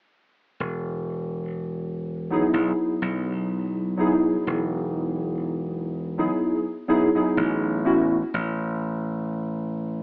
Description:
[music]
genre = vaporwave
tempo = 62 BPM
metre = 4/4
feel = swing 55% on 16ths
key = E major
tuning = A4 = 443 Hz
[part]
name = slap bass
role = bass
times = 0.6-10.0 s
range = E1 to B1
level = -27 LUFS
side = equal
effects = none
[part]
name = warbly lo-fi synth keys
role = accompaniment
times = 2.3-8.2 s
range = F#3 to G#4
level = -22 LUFS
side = equal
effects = wide subtle chorus, tape echo
[sound]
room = wet studio ambience, RT60 0.5 s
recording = rough home demo mix, cassette tape, AM radio sound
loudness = -22 LUFS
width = side -26 dB against mid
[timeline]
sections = 0.6-10.0 A section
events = none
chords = 0.6 Emaj7; 7.9 A

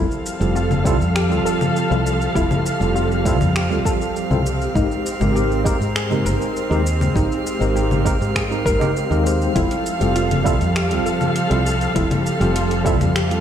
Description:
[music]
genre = sunset chillout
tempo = 100 BPM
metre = 4/4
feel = straight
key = unclear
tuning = A4 = 440 Hz
[part]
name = tine electric piano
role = accompaniment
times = 0.0-13.4 s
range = G3 to C5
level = -23 LUFS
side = right 1 dB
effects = medium stereo tremolo, auto-pan, tape echo
[part]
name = dark chamber string section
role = sustained chords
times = 0.0-13.4 s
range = F3 to F5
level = -24 LUFS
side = equal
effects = none
[part]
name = soft round pluck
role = arpeggios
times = 0.0-13.4 s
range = Eb4 to E5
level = -27 LUFS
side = left 2 dB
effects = wide subtle chorus, tape echo
[part]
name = woody fretless electric bass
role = bass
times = 0.0-13.4 s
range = F1 to Ab2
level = -21 LUFS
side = equal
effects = none
[part]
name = drifting glass-harmonics texture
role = texture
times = 0.2-13.4 s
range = F5 to F6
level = -30 LUFS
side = right 3 dB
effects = chorus, built-in reverb
[part]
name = deep house drum kit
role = drums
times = 0.1-13.4 s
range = congas, finger snaps, hi-hat, shaker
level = -25 LUFS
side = left 2 dB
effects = overdrive
[part]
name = electronic kick drum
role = drums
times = 0.9-13.0 s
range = none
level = -23 LUFS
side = equal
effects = overdrive
[sound]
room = moderate lush hall reverb, RT60 2.3 s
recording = played on a big sound system in a bare room, stone room reverb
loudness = -16 LUFS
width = side -9 dB against mid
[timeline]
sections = 0.0-13.4 A section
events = none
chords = 0.0 Fmaj9; 4.8 Abmaj9; 9.6 Fmaj9

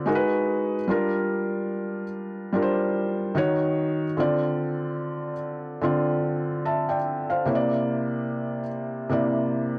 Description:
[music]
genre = R&B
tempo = 73 BPM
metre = 4/4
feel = swing 58% on 16ths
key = D minor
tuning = A4 = 441 Hz
[part]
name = felt-muted upright piano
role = solo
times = 0.0-9.8 s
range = C3 to A5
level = -23 LUFS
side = equal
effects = none
[sound]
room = light reverb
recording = dry, gritty hardware recording, cassette tape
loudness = -23 LUFS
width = side -33 dB against mid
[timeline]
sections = 0.0-9.8 A section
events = none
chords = 0.1 G#m7; 0.9 Gm7; 3.4 Ebm7; 4.2 Dm7; 7.5 C9

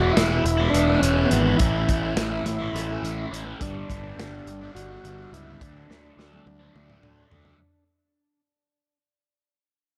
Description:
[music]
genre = psychedelic rock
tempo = 210 BPM (eighths)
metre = 7/8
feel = straight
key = unclear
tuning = A4 = 440 Hz
[part]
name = combo organ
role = melody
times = 0.0-7.3 s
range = B3 to F#4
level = -29 LUFS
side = equal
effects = analog delay
[part]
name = crunchy overdriven guitar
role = riff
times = 0.0-7.6 s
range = G2 to E4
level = -30 LUFS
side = equal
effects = phaser
[part]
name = fuzz picked electric bass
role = bass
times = 0.0-7.5 s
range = E1 to D2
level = -29 LUFS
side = equal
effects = overdrive
[part]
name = crunchy breakbeat drum kit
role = drums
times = 0.2-7.6 s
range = hi-hat, kick drum, snare drum, toms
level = -28 LUFS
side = equal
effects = none
[sound]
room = light reverb, studio reverb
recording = none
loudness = -23 LUFS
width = mono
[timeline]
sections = 0.0-7.6 A section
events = fade-out 0.0-7.6; drum fill 5.9-7.6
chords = 0.0 E; 1.6 A; 3.6 G; 5.6 D

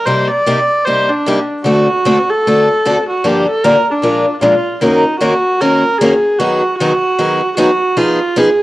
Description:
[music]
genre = jazz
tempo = 152 BPM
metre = 4/4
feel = swing 63% on 8ths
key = Eb minor from 4.8 s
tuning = A4 = 438 Hz
[part]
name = rich viola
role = melody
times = 0.0-8.6 s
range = D4 to D5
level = -14 LUFS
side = right 1 dB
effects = plate reverb
[part]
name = picked steel-string acoustic guitar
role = accompaniment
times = 0.1-8.5 s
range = G2 to Bb4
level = -13 LUFS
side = left 1 dB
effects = cassette tape, plate reverb
[sound]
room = moderate studio reverb, RT60 0.6 s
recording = home recording on cassette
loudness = -11 LUFS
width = side -17 dB against mid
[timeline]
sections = 0.0-4.8 A section; 4.8-8.6 B section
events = none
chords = 0.1 Cm7; 1.7 D7; 3.2 Gm7; 4.0 Bb7; 4.8 Ebm7; 6.4 Abm7/Eb; 8.0 Fm7b5

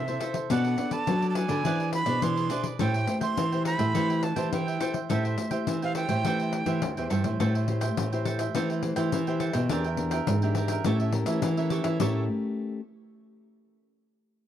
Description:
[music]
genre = samba and choro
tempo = 104 BPM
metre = 4/4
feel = straight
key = A minor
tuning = A4 = 439 Hz
[part]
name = breathy bright jazz flute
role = melody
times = 0.0-7.1 s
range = E5 to C6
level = -31 LUFS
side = right 4 dB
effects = none
[part]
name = cavaquinho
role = accompaniment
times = 0.0-12.2 s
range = D4 to G5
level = -34 LUFS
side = right 7 dB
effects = none
[part]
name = nylon-string guitar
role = accompaniment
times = 0.0-12.8 s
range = B2 to C#5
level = -32 LUFS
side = left 4 dB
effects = none
[part]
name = nylon-string guitar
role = bass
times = 0.0-12.3 s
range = D2 to F#3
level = -28 LUFS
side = right 1 dB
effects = none
[part]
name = pandeiro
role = percussion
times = 0.1-12.1 s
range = none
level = -33 LUFS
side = left 8 dB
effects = none
[sound]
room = small room ambience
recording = dry, close 1970s-style studio recording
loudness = -25 LUFS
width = side -10 dB against mid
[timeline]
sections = 0.0-7.4 A section; 7.4-12.0 B section; 12.0-14.3 C section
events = none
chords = 0.0 Fmaj7; 0.5 Bm9; 1.7 E7b13; 2.8 Am7; 9.7 Em7b5; 10.9 A7b9

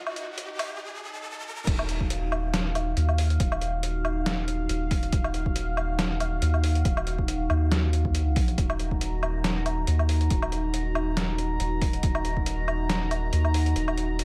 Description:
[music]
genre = deep dubstep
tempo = 139 BPM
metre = 4/4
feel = swing 55% on 16ths, half-time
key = Eb minor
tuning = A4 = 440 Hz
[part]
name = dark analog pad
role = sustained chords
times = 0.0-14.2 s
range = Eb4 to Bb5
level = -34 LUFS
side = equal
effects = chorus, phaser
[part]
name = soft dub sub bass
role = bass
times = 0.0-14.2 s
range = Eb1 to Eb2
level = -29 LUFS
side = equal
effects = none
[part]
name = riser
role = sound effects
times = 0.0-1.7 s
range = none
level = -40 LUFS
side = equal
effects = none
[part]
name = trip hop sampler-style drum kit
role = drums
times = 0.1-14.2 s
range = crash cymbal, hi-hat, snare drum, woodblock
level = -33 LUFS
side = equal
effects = none
[part]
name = electronic kick drum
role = drums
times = 1.7-12.4 s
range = none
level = -29 LUFS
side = equal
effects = none
[sound]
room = digital ambience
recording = high-pass filter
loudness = -26 LUFS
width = mono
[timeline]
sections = 0.0-1.7 A section; 1.7-14.2 B section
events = build-up 0.0-1.7; riser 0.0-1.7; break 0.8-1.7, 13.8-14.2; drop 1.7-14.2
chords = 0.0 Ebm; 1.7 Ebmadd9

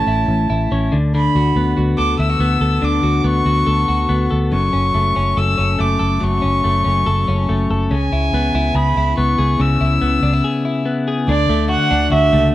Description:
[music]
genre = jangly indie pop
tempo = 142 BPM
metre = 4/4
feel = straight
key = unclear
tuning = A4 = 440 Hz
[part]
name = dark violin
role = melody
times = 0.0-12.5 s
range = D5 to E6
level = -19 LUFS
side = right 1 dB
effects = none
[part]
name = twelve-string electric guitar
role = arpeggios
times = 0.0-12.5 s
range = F#2 to A4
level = -18 LUFS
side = left 3 dB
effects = none
[part]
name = vintage muted fingered electric bass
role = bass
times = 0.0-12.5 s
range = F#1 to D2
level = -18 LUFS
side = right 1 dB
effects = none
[sound]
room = light reverb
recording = dry, close 1970s-style studio recording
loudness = -14 LUFS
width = side -14 dB against mid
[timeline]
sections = 0.0-11.3 A section; 11.3-12.5 B section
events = break 10.4-11.3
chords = 0.0 A; 0.9 D6; 4.5 F#m; 7.9 C#m7; 11.3 D

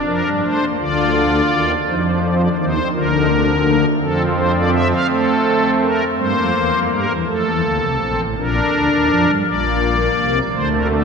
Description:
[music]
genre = classical, baroque-style 3-part fugue for pipe organ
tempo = 55 BPM (dotted quarters)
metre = 6/8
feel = straight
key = unclear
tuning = A4 = 440 Hz
[part]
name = pipe organ, strings celeste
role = solo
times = 0.0-11.0 s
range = A1 to F5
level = -15 LUFS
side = equal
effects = none
[sound]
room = wet cathedral reverb, RT60 4.9 s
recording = minimal, uncompressed stereo recording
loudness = -15 LUFS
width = side -5 dB against mid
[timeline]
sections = 0.0-8.4 A section; 8.4-11.0 B section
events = none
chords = 0.0 Bb/F; 0.8 Dm; 1.9 F5; 2.9 Bb/D; 4.0 F; 5.1 Am; 6.2 C7; 7.3 F; 8.4 Gm/Bb; 9.5 Bb; 10.5 D5

